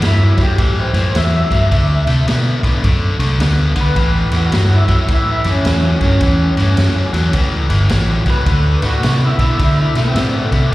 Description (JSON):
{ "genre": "electric blues shuffle", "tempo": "106 BPM", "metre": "4/4", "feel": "swing 64% on 8ths", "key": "A mixolydian", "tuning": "A4 = 440 Hz", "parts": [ { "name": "electric guitar through a small old amp", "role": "melody", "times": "0.0-10.7 s", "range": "A3 to E5", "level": "-21 LUFS", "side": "equal", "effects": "ensemble chorus, slapback echo" }, { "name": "cranked stack guitar", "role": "riff", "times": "0.0-10.7 s", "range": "A2 to B3", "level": "-19 LUFS", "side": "left 2 dB", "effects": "overdrive, slapback echo" }, { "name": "vintage muted fingered electric bass", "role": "bass", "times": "0.0-10.7 s", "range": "G1 to D3", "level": "-15 LUFS", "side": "equal", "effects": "none" }, { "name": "vintage drum kit", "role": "drums", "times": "0.0-10.6 s", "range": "kick drum, ride cymbal, snare drum", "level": "-19 LUFS", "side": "equal", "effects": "none" } ], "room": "little or no reverb", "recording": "live gig heard through the venue's PA, recital hall reverb", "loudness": "-12 LUFS", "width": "side -17 dB against mid", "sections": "0.0-10.7 A section", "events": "clean electric guitar solo 0.0-10.7", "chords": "0.0 A5; 1.7 D7(no3); 4.0 A7; 8.5 D7(no3)" }